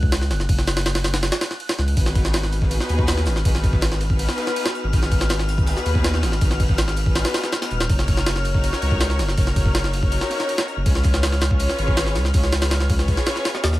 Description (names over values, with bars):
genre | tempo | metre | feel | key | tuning
drum and bass, jungle | 162 BPM | 4/4 | straight | G# dorian | A4 = 440 Hz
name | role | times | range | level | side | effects
saturated sub bass | bass | 0.0-13.8 s | D#1 to D#2 | -22 LUFS | equal | none
jungle sampler-style drum kit | drums | 0.0-13.8 s | hi-hat, kick drum, ride cymbal, snare drum | -21 LUFS | equal | none
wind-like tuned noise texture | texture | 0.0-13.8 s | E#6 to F#6 | -32 LUFS | left 3 dB | built-in reverb
rich studio string section | sustained chords | 2.0-13.8 s | B3 to C#5 | -27 LUFS | left 1 dB | none
crunchy breakbeat drum kit | drums | 2.0-13.6 s | hi-hat, snare drum | -38 LUFS | right 2 dB | none
room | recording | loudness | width
little or no reverb | none | -18 LUFS | side -16 dB against mid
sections
0.0-13.8 A section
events
none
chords
0.0 F#5; 2.0 G#m7; 7.9 F#6; 10.9 C#7